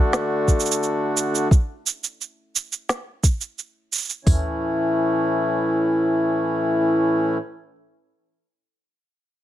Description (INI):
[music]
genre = folktronica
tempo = 87 BPM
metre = 4/4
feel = straight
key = A major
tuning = A4 = 440 Hz
[part]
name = hand-pumped harmonium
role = sustained chords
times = 0.0-7.4 s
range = A2 to F#4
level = -20 LUFS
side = equal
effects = plate reverb
[part]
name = electronic snare drum and shaker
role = drums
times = 0.1-4.2 s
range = none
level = -24 LUFS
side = right 4 dB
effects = none
[part]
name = organic electronic drum kit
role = drums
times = 0.5-4.4 s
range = hi-hat, kick drum, toms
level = -17 LUFS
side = equal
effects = none
[sound]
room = moderate studio reverb, RT60 0.7 s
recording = none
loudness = -19 LUFS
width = side -12 dB against mid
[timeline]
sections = 0.0-4.3 A section; 4.3-7.0 B section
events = none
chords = 0.0 D; 1.5 N.C.; 4.3 A